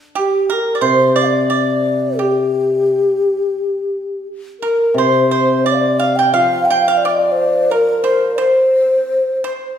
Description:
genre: chinese traditional, Chinese chamber ensemble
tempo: 88 BPM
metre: 4/4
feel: rubato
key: unclear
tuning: A4 = 440 Hz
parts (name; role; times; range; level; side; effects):
- mellow hollow low xiao; melody; 0.2-9.7 s; G4 to G5; -16 LUFS; left 1 dB; none
- pipa; second line; 0.2-9.7 s; G4 to G5; -19 LUFS; right 6 dB; none
- hammered dulcimer; accompaniment; 0.8-8.4 s; C3 to F3; -20 LUFS; left 2 dB; none
- breathy mellow low xiao; second line; 4.6-9.8 s; Bb4 to G5; -18 LUFS; left 2 dB; none
room: wet recital hall reverb, RT60 1.6 s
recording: heard from further back in the room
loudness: -13 LUFS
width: side -9 dB against mid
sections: 0.0-5.0 A section; 5.0-9.8 B section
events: none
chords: none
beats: 0.17 0.84 1.51 | 2.20 2.88 3.56 4.27 | 4.97 5.66 6.35 7.03 | 7.71 8.38 9.04 9.70

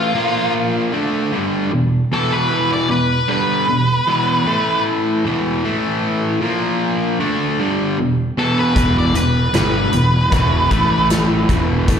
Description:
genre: blues rock power trio and southern rock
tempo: 77 BPM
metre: 4/4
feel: straight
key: E minor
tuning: A4 = 438 Hz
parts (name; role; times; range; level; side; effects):
- octave-fuzz lead guitar; melody; 0.0-11.1 s; F4 to D5; -19 LUFS; equal; distortion, slapback echo, digital delay
- cranked stack guitar; riff; 0.0-12.0 s; E2 to D4; -17 LUFS; equal; overdrive, slapback echo
- fuzz fingered electric bass; bass; 8.8-12.0 s; E1 to A1; -19 LUFS; equal; overdrive
- big rock drum kit; drums; 8.8-12.0 s; hi-hat, kick drum, snare drum; -20 LUFS; equal; none
room: light reverb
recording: live gig heard through the venue's PA, recital hall reverb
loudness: -15 LUFS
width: side -7 dB against mid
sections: 0.0-12.0 A section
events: none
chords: 0.1 A#5; 0.9 Em; 4.5 A5; 5.2 E5; 5.6 A5; 6.4 A#5; 7.2 Em; 10.7 A5; 11.5 E5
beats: 0.15 0.93 1.72 | 2.50 3.29 4.07 4.85 | 5.63 6.42 7.20 7.98 | 8.76 9.54 10.32 11.10 | 11.88

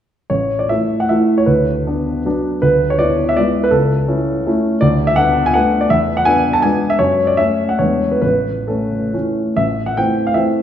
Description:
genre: classical, romantic triple-time dance for piano with dotted rhythms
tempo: 126-178 BPM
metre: 3/4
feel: rubato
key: A major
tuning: A4 = 440 Hz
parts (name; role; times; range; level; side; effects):
- dark baby grand piano; solo; 0.3-10.6 s; A1 to A5; -13 LUFS; equal; none
room: wet recital hall reverb, RT60 1.8 s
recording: recorded in a church or concert hall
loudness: -13 LUFS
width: side -9 dB against mid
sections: 0.3-9.6 A section; 9.6-10.6 B section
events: none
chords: 0.3 A5; 1.5 Bm/D; 2.6 E7/D; 3.7 A/C#; 4.8 Bm7/D; 5.9 E7; 7.0 F#m; 7.8 E7; 8.2 A; 9.6 Am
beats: | 0.30 0.70 1.10 | 1.47 1.86 2.25 | 2.63 3.00 3.38 | 3.73 4.09 4.47 | 4.82 5.18 5.55 | 5.91 6.27 6.64 | 7.00 7.38 7.79 | 8.22 8.68 9.13 | 9.57 9.97 10.35

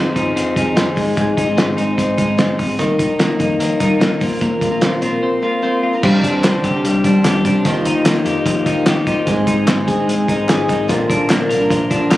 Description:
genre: jangly indie pop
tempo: 148 BPM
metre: 4/4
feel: straight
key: Eb major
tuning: A4 = 437 Hz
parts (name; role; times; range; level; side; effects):
- picked steel-string acoustic guitar; accompaniment; 0.0-12.2 s; Ab2 to Bb4; -21 LUFS; right 2 dB; none
- twelve-string electric guitar; arpeggios; 0.0-12.2 s; Ab2 to Bb4; -17 LUFS; left 2 dB; analog delay
- picked electric bass; bass; 0.0-12.2 s; F1 to F2; -26 LUFS; right 1 dB; none
- cloth-damped thuddy drum kit; drums; 0.2-12.2 s; crash cymbal, hi-hat, kick drum, snare drum; -19 LUFS; equal; none
- combo organ; accompaniment; 6.0-12.2 s; C4 to Bb4; -23 LUFS; right 1 dB; none
- group handclap; percussion; 6.4-12.2 s; none; -29 LUFS; left 1 dB; none
room: light reverb, studio reverb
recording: recorded on a phone in the room, club reverb, compression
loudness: -14 LUFS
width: side -16 dB against mid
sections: 0.0-6.0 A section; 6.0-12.2 B section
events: none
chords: 0.0 Fm7; 1.0 Ab; 2.8 Eb; 4.2 Bbsus2; 6.0 Csus2; 7.7 Ebadd9; 9.3 Ab; 10.9 Bb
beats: 0.36 0.77 | 1.18 1.58 1.99 2.39 | 2.79 3.20 3.60 4.01 | 4.42 4.82 5.22 5.63 | 6.04 6.44 6.84 7.25 | 7.65 8.06 8.46 8.87 | 9.27 9.68 10.08 10.49 | 10.89 11.30 11.71 12.11

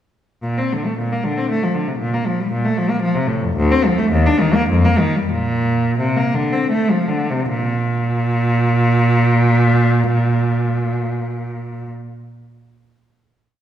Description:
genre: classical, baroque-style suite movement for unaccompanied cello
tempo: 75-120 BPM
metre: 3/4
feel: rubato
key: Bb major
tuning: A4 = 445 Hz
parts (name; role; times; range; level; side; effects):
- rich cello; solo; 0.4-11.9 s; D2 to D4; -15 LUFS; equal; none
room: wet recital hall reverb, RT60 1.6 s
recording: heard from further back in the room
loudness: -15 LUFS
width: side -10 dB against mid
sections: 0.4-7.5 A section; 7.5-12.1 final chord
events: slowing down 2.8-7.5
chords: none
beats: | 0.42 0.97 1.49 | 2.00 2.52 3.02 | 3.56 4.12 4.68 | 5.31 5.98 6.71 | 7.49 8.25 9.03 | 9.80 10.58 11.35

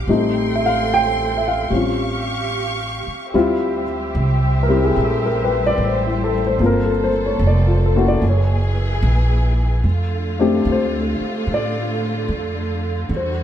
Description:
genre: jazz ballad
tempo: 74 BPM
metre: 4/4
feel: swing 66% on 8ths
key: D minor from 3.3 s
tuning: A4 = 442 Hz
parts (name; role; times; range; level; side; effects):
- dark baby grand piano; accompaniment; 0.0-13.4 s; G3 to G5; -19 LUFS; left 2 dB; none
- rich studio string section; sustained chords; 0.0-13.4 s; D3 to C#6; -25 LUFS; right 1 dB; none
- upright bass; bass; 0.0-13.4 s; F1 to A2; -20 LUFS; right 1 dB; none
room: light reverb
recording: none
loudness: -16 LUFS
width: side -10 dB against mid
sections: 0.0-3.3 A section; 3.3-13.4 B section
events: none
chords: 0.1 Am7b5; 1.7 A7alt; 3.3 Dm11; 6.6 Gm11; 8.2 F#9; 9.8 F6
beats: | 0.08 0.90 1.71 2.53 | 3.34 4.16 4.97 5.78 | 6.60 7.41 8.22 9.03 | 9.84 10.66 11.47 12.28 | 13.09

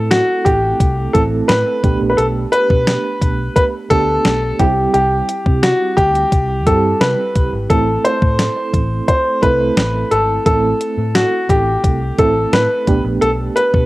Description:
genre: 1980s-style pop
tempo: 87 BPM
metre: 4/4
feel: straight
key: A dorian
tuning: A4 = 440 Hz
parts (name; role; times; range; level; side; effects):
- clear baby grand piano; melody; 0.0-13.9 s; F#4 to C5; -16 LUFS; left 1 dB; cassette tape
- FM electric piano with tremolo; accompaniment; 0.0-13.9 s; G3 to A4; -21 LUFS; right 4 dB; cassette tape
- vintage muted fingered electric bass; bass; 0.0-13.9 s; G#1 to C3; -20 LUFS; equal; none
- clean 12-bit digital drum machine; drums; 0.1-13.9 s; hi-hat, kick drum, snare drum; -16 LUFS; equal; cassette tape
room: light reverb, digital ambience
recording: home recording on cassette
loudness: -13 LUFS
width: side -18 dB against mid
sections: 0.0-13.9 A section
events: none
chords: 0.0 Am; 1.8 Gadd9; 4.6 C; 7.7 Am; 12.9 Gadd9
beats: 0.12 0.81 1.50 | 2.19 2.88 3.57 4.25 | 4.95 5.63 6.32 7.01 | 7.70 8.39 9.08 9.77 | 10.46 11.15 11.84 12.53 | 13.22

